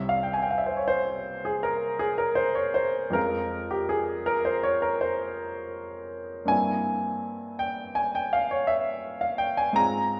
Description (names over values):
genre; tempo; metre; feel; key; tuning
classical, romantic nocturne for solo piano; 54 BPM (dotted quarters); 9/8; rubato; unclear; A4 = 440 Hz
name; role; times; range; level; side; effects
warm baby grand piano; solo; 0.0-10.2 s; C2 to Bb5; -27 LUFS; equal; none
room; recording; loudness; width
wet recital hall reverb, RT60 1.4 s; heard from further back in the room; -27 LUFS; mono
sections
0.0-10.2 A section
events
none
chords
0.0 C; 3.2 Fm; 6.5 C7/G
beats
0.90 2.02 | 3.16 4.29 5.41 | 6.51 7.62 8.71 | 9.80